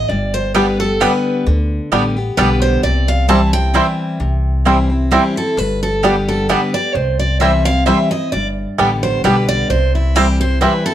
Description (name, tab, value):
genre	bluegrass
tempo	131 BPM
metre	3/4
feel	swing 54% on 8ths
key	C major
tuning	A4 = 441 Hz
part	picked steel-string acoustic guitar	melody	0.0-10.9 s	E4 to A5	-19 LUFS	right 1 dB	plate reverb
part	picked steel-string acoustic guitar	accompaniment	0.0-10.9 s	G2 to G4	-19 LUFS	left 2 dB	none
part	upright bass	bass	0.0-10.6 s	G1 to D2	-18 LUFS	equal	none
part	mandolin	stabs	0.5-10.7 s	B3 to G5	-20 LUFS	right 6 dB	none
part	bluegrass banjo	arpeggios	0.6-10.7 s	G3 to E4	-17 LUFS	right 1 dB	none
room	moderate studio reverb, RT60 0.6 s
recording	none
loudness	-13 LUFS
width	side -11 dB against mid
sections	0.0-4.2 A section; 4.2-10.9 B section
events	steel-string acoustic guitar solo 0.0-4.2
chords	0.1 G; 2.8 C; 5.6 G; 7.0 C; 8.3 G; 9.7 C